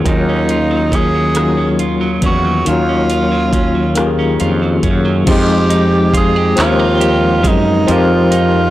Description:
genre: slow six-eight R&B.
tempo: 46 BPM (dotted quarters).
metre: 6/8.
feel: straight.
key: F phrygian.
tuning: A4 = 440 Hz.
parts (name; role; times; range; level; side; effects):
clean electric guitar; second line; 0.0-8.7 s; Eb3 to G4; -21 LUFS; right 4 dB; slapback echo.
barky tine electric piano; accompaniment; 0.0-8.7 s; Eb3 to Bb4; -16 LUFS; left 3 dB; medium tremolo.
breathy tenor saxophone; melody; 0.1-8.7 s; Eb4 to Ab4; -17 LUFS; right 1 dB; none.
fretless electric bass; bass; 0.1-8.7 s; Eb2 to Gb2; -17 LUFS; right 1 dB; transformer saturation.
smooth R&B drum kit; drums; 0.1-8.5 s; crash cymbal, handclaps, hi-hat, kick drum, rim click; -19 LUFS; right 1 dB; soft clipping on snare.
room: light reverb, digital ambience.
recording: blown-out, overdriven recording, overdrive.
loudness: -11 LUFS.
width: side -14 dB against mid.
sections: 0.0-5.3 A section; 5.3-8.7 B section.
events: none.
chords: 0.0 Ebm9; 5.3 Fm9.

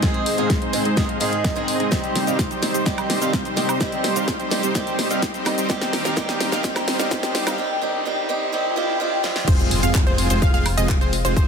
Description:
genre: EDM, festival progressive house.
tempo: 127 BPM.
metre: 4/4.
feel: straight.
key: F minor.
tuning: A4 = 440 Hz.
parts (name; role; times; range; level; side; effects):
picked swing-style acoustic guitar; accompaniment; 0.0-9.5 s; Ab2 to Ab4; -26 LUFS; right 2 dB; sidechain pumping, ping-pong delay.
lush unison pad; sustained chords; 0.0-11.5 s; Eb2 to C5; -29 LUFS; equal; chorus, sidechain pumping.
dense compressed supersaw; riff; 0.0-11.5 s; G3 to F5; -25 LUFS; equal; sidechain pumping, low-pass filter, ping-pong delay.
electronic kick drum; drums; 0.0-11.5 s; none; -22 LUFS; equal; overdrive, small room reverb.
pop drum kit; drums; 0.0-11.5 s; cabasa, crash cymbal, handclaps, hi-hat, snare drum, woodblock; -26 LUFS; equal; soft clipping on snare, small room reverb.
riser, swell and impact; sound effects; 4.5-11.4 s; none; -31 LUFS; equal; none.
wide unison pluck; arpeggios; 9.5-11.5 s; C5 to F5; -26 LUFS; right 2 dB; sidechain pumping, ping-pong delay.
fat analog bass; bass; 9.5-11.5 s; F1; -23 LUFS; equal; sidechain pumping.
room: light reverb.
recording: dense, heavily limited modern master, high-pass filter.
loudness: -18 LUFS.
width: side -6 dB against mid.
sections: 0.0-9.5 A section; 9.5-11.5 B section.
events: build-up 0.0-9.5; drum fill 0.0-7.6, 9.2; filter sweep on supersaw synth 0.0-9.5; riser 4.5-9.5; swell 8.5-9.5; drop 9.5-11.5; impact 9.5-11.4.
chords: 0.0 Ab; 1.9 Cm; 5.7 Eb; 9.5 Fm.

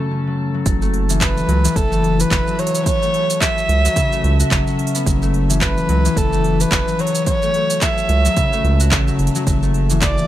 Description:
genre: organic downtempo.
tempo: 109 BPM.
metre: 4/4.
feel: swing 57% on 16ths.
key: F# minor pentatonic.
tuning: A4 = 440 Hz.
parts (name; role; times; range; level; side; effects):
warm kamancheh; melody; 0.0-10.3 s; A4 to E5; -21 LUFS; right 1 dB; tape echo.
warbly tape-like pad; sustained chords; 0.0-0.6, 10.2-10.3 s; F#2 to F#4; -40 LUFS; equal; none.
concert harp; arpeggios; 0.0-10.3 s; C#3 to F#4; -20 LUFS; left 3 dB; tape echo.
drifting glass-harmonics texture; texture; 0.0-0.7 s; A4 to A5; -38 LUFS; left 1 dB; chorus, built-in reverb.
round analog bass; bass; 0.7-10.2 s; F#1 to C#2; -18 LUFS; right 1 dB; sidechain pumping.
afro-pop drum kit; drums; 0.7-10.3 s; handclaps, hi-hat, shaker; -22 LUFS; right 2 dB; studio ambience.
electronic kick drum; drums; 0.7-10.1 s; none; -21 LUFS; right 1 dB; overdrive, studio ambience.
room: little or no reverb.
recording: none.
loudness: -14 LUFS.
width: side -13 dB against mid.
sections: 0.7-10.3 A section.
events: none.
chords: 0.0 D/F#; 0.7 F#m7; 9.5 D/F#.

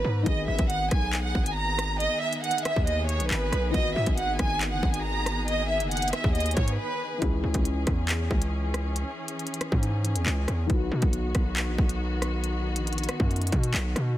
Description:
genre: hip hop, drill.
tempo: 138 BPM.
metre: 4/4.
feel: half-time.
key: G# minor.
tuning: A4 = 437 Hz.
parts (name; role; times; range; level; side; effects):
warm studio violin section; melody; 0.0-7.2 s; B4 to A#5; -28 LUFS; right 1 dB; ping-pong delay.
felt-muted upright piano; accompaniment; 0.0-14.2 s; D#3 to G#4; -37 LUFS; left 5 dB; none.
rich studio string section; sustained chords; 0.0-14.1 s; D#3 to A#5; -34 LUFS; left 1 dB; none.
distorted 808-style bass; bass; 0.0-14.2 s; F#1 to B2; -28 LUFS; equal; distortion.
drill drum kit; drums; 0.3-14.1 s; handclaps, hi-hat, kick drum, rim click; -28 LUFS; equal; none.
room: little or no reverb.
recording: none.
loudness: -24 LUFS.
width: side -13 dB against mid.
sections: 0.3-14.2 A section.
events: break 6.8-7.2.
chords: 0.3 G#m; 7.2 C#m; 10.7 B.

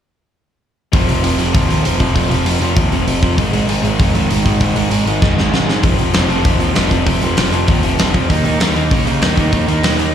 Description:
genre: punk rock.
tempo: 195 BPM.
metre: 4/4.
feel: straight.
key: F minor.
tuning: A4 = 439 Hz.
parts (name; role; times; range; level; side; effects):
crunchy overdriven guitar; riff; 0.9-10.1 s; F2 to Eb4; -18 LUFS; right 9 dB; none.
overdriven electric guitar; riff; 0.9-10.1 s; F2 to Eb4; -20 LUFS; left 12 dB; slapback echo.
fuzz picked electric bass; bass; 0.9-10.1 s; F1 to Db3; -18 LUFS; left 1 dB; overdrive.
big rock drum kit; drums; 0.9-10.1 s; hi-hat, kick drum, snare drum; -17 LUFS; equal; none.
room: small room reverb.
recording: live gig heard through the venue's PA, club reverb.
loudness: -12 LUFS.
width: side -9 dB against mid.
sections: 0.9-10.1 A section.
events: drum fill 5.2-5.8.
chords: 0.9 F5; 3.4 Ab5; 5.8 F5; 8.3 Eb5.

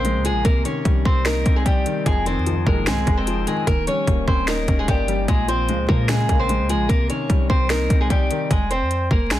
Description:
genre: hip hop, trap.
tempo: 149 BPM.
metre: 4/4.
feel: half-time.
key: F minor.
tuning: A4 = 438 Hz.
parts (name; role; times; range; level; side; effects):
picked steel-string acoustic guitar; melody; 0.0-9.4 s; G3 to Db5; -23 LUFS; right 1 dB; low-pass filter.
dark grand piano; accompaniment; 0.0-8.5 s; F2 to Eb4; -25 LUFS; left 3 dB; low-pass filter.
clean 808-style bass; bass; 0.0-9.4 s; Eb1 to Bb2; -22 LUFS; equal; none.
trap drum kit; drums; 0.0-9.4 s; finger snaps, hi-hat, kick drum, snare drum; -21 LUFS; equal; none.
mellow synth brass; stabs; 2.5-3.0, 5.7-6.2 s; C2 to F3; -32 LUFS; equal; none.
room: little or no reverb.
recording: dense, heavily limited modern master, vinyl crackle.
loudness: -17 LUFS.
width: side -13 dB against mid.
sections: 0.0-8.5 A section.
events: none.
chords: 0.5 Cm; 2.1 Fm7; 3.7 Eb7; 5.3 Bbm7; 6.9 Cm; 8.5 Fm.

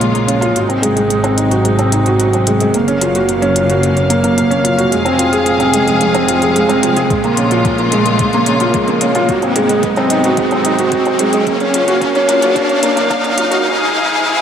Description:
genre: piano and strings electronica.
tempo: 110 BPM.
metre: 4/4.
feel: straight.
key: Bb minor.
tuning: A4 = 441 Hz.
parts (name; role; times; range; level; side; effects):
rich studio string section; sustained chords; 0.0-14.4 s; C3 to F5; -18 LUFS; left 1 dB; shimmer reverb.
felt-muted upright piano; riff; 0.0-13.7 s; Ab3 to Ab4; -13 LUFS; right 1 dB; tape echo, shimmer reverb.
rich chamber double bass section; bass; 0.0-13.6 s; F1 to Bb1; -21 LUFS; equal; sidechain pumping.
electronic hi-hat; drums; 0.0-13.6 s; none; -21 LUFS; equal; none.
riser; sound effects; 4.9-14.4 s; none; -22 LUFS; left 1 dB; none.
electronic kick drum; drums; 7.1-13.2 s; none; -21 LUFS; left 1 dB; none.
room: wet scoring stage reverb, RT60 1.7 s, studio reverb.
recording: high-pass filter.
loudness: -11 LUFS.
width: side -8 dB against mid.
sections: 0.0-14.4 A section.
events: build-up 0.0-14.4; filter sweep 0.0-14.4; riser 4.9-14.4.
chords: 0.0 Bbm7; 0.6 Ab7; 2.7 Gbmaj7; 4.9 Fm; 7.1 Bbm7; 9.3 Ab7; 11.5 Gbmaj7; 13.7 Fm.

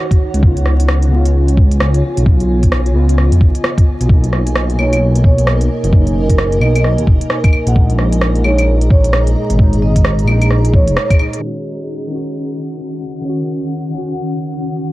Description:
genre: future garage.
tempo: 131 BPM.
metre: 4/4.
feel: swing 61% on 16ths.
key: Eb minor.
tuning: A4 = 440 Hz.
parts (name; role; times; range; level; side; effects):
muted felt-like synth keys; accompaniment; 0.0-14.9 s; Bb2 to Gb4; -21 LUFS; left 1 dB; chorus, phaser, vintage 12-bit sampler grit, sidechain pumping, analog delay.
granular cloud pad; sustained chords; 0.0-14.9 s; Eb3 to Bb5; -23 LUFS; right 1 dB; built-in reverb, sidechain pumping.
electronic kick drum; drums; 0.1-11.2 s; none; -10 LUFS; equal; vintage 12-bit sampler grit.
organic electronic drum kit; drums; 0.1-14.8 s; claves, hi-hat, rim click; -20 LUFS; equal; low-pass filter on hats, vintage 12-bit sampler grit, low-pass filter on snare, low-pass filter on perc, low-pass filter on room.
dark detuned saw bass; bass; 0.3-11.0 s; F1 to F2; -13 LUFS; equal; sidechain pumping.
vibraphone with soft mallets; melody; 4.8-11.1 s; A#4 to F#5; -22 LUFS; right 1 dB; analog delay.
room: digital ambience.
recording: vinyl crackle, low-pass filter.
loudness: -11 LUFS.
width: side -17 dB against mid.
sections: 0.0-11.4 A section; 11.4-14.9 B section.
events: band accent 11.0; filter sweep 11.4-14.9.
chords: 0.4 Db7; 4.1 Bmaj7; 7.8 Bb7sus4; 11.4 Ebm7.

